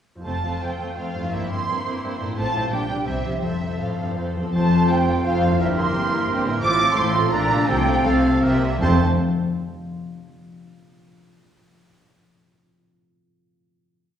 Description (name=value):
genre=classical, dramatic, fast romantic movement for symphony orchestra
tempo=149-178 BPM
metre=3/4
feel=rubato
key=F major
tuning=A4 = 438 Hz
part: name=concert harp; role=arpeggios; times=0.2-9.0 s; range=F2 to F5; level=-28 LUFS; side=left 4 dB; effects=none
part: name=warm symphonic violin section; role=melody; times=0.3-9.0 s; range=E5 to D6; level=-27 LUFS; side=right 2 dB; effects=none
part: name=rich symphonic violin section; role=second line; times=0.3-9.0 s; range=E4 to F5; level=-32 LUFS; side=equal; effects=none
part: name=warm symphonic viola section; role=accompaniment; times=0.3-9.0 s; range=D3 to F4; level=-30 LUFS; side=right 2 dB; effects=none
part: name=rich symphonic cello section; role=bass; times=0.3-9.0 s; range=E2 to C3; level=-27 LUFS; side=equal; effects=none
part: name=rich symphonic double bass section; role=bass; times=0.3-9.0 s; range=F1 to C2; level=-28 LUFS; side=right 1 dB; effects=none
part: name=large flute ensemble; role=second line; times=4.5-9.0 s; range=C5 to D6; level=-26 LUFS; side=right 2 dB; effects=none
part: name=dark French horn section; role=sustained chords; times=4.5-9.0 s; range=A3 to F4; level=-25 LUFS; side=equal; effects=none
part: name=clear clarinet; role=second line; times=4.6-9.0 s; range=C4 to F4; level=-29 LUFS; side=right 4 dB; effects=none
part: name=warm oboe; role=second line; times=4.6-9.0 s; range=A4 to C5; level=-28 LUFS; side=right 3 dB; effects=none
part: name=timpani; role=percussion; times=7.7-9.0 s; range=F2 to C3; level=-28 LUFS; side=left 1 dB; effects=none
room=wet recital hall reverb, RT60 1.4 s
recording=recorded in a church or concert hall, studio reverb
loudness=-19 LUFS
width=side -9 dB against mid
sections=0.3-4.5 A section; 4.5-8.8 A section; 8.8-9.9 final chord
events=slowing down 6.1-8.8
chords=0.3 F; 1.3 C7/G; 2.4 F/A; 2.7 Gm/Bb; 3.1 C; 3.4 F; 5.6 C7/G; 6.6 F/A; 7.3 Bbmaj7; 7.7 F/C; 8.4 C7; 8.8 F